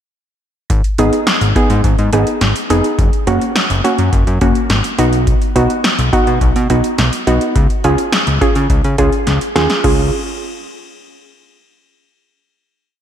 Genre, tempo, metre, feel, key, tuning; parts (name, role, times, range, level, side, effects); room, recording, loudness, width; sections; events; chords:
synth-pop; 105 BPM; 4/4; straight; Db mixolydian; A4 = 440 Hz
fat analog bass; bass; 0.7-10.1 s; F1 to Db3; -15 LUFS; equal
electro analog drum machine; drums; 0.7-10.0 s; crash cymbal, hi-hat, kick drum, snare drum; -16 LUFS; equal; overdrive
soft round pluck; accompaniment; 1.0-10.1 s; Bb3 to Ab4; -16 LUFS; right 1 dB; chorus, slapback echo
moderate lush hall reverb, RT60 2.1 s; big arena sound; -11 LUFS; side -9 dB against mid
0.7-9.8 verse; 9.8-12.1 final chord
drum fill 9.3-9.8
0.7 Abm; 3.0 Gb; 5.0 Cb; 7.6 Db